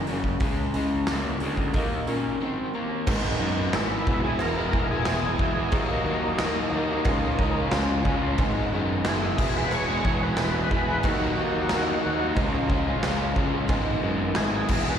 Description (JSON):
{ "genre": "classic rock", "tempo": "90 BPM", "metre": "4/4", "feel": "straight", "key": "G# minor", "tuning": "A4 = 440 Hz", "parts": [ { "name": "picked steel-string acoustic guitar", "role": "accompaniment", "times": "0.0-15.0 s", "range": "G#2 to A#4", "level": "-35 LUFS", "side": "right 2 dB", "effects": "none" }, { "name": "overdriven electric guitar", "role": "riff", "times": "0.0-15.0 s", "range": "F#2 to E#4", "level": "-30 LUFS", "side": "left 11 dB", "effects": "slapback echo" }, { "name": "raw garage guitar", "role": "riff", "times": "0.0-15.0 s", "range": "E2 to G#4", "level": "-32 LUFS", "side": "right 11 dB", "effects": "overdrive, slapback echo" }, { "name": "fuzz picked electric bass", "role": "bass", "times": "0.1-15.0 s", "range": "E1 to A#2", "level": "-29 LUFS", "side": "right 1 dB", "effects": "overdrive" }, { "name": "big rock drum kit", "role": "drums", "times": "0.1-14.8 s", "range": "crash cymbal, hi-hat, kick drum, snare drum", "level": "-28 LUFS", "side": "equal", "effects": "none" }, { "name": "tonewheel organ", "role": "sustained chords", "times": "3.1-15.0 s", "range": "E#3 to D#5", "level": "-38 LUFS", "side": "right 1 dB", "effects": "none" }, { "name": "cowbell", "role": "percussion", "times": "3.1-14.5 s", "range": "none", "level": "-38 LUFS", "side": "right 3 dB", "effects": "none" }, { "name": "octave-fuzz lead guitar", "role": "second line", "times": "3.7-15.0 s", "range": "A#3 to G#4", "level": "-34 LUFS", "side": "right 3 dB", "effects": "distortion, plate reverb, slapback echo" }, { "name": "overdriven tonewheel organ", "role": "melody", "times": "3.8-15.0 s", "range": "D#4 to C#5", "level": "-30 LUFS", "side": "left 1 dB", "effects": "chorus vibrato, slow rotary speaker, plate reverb, slapback echo" } ], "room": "light reverb", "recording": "live gig heard through the venue's PA, recital hall reverb", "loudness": "-22 LUFS", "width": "side -8 dB against mid", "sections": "0.0-3.1 A section; 3.1-15.0 B section", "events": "break 2.4-3.1", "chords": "0.4 C#m; 1.7 D#m; 3.1 G#m; 4.1 E; 5.7 D#m; 7.1 C#; 8.4 G#m; 9.4 E; 11.0 D#m; 12.4 C#; 13.7 G#m" }